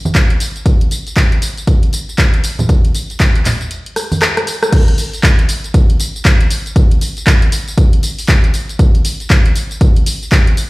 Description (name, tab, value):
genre	house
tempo	118 BPM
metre	4/4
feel	swing 61% on 16ths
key	none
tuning	none
part	electronic kick drum	drums	0.1-10.4 s	none	-11 LUFS	equal	overdrive
part	punchy analog drum machine	drums	0.1-10.7 s	crash cymbal, handclaps, hi-hat, rim click, tambourine	-17 LUFS	equal	none
part	congas	percussion	0.1-4.2 s	none	-18 LUFS	right 1 dB	none
room	little or no reverb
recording	played on a big sound system in a bare room, large studio reverb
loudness	-11 LUFS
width	side -22 dB against mid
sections	0.0-4.7 A section; 4.7-10.7 B section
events	break 3.7-4.7; drum fill 4.0-4.7; band accent 4.6; drop 4.7-10.7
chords	none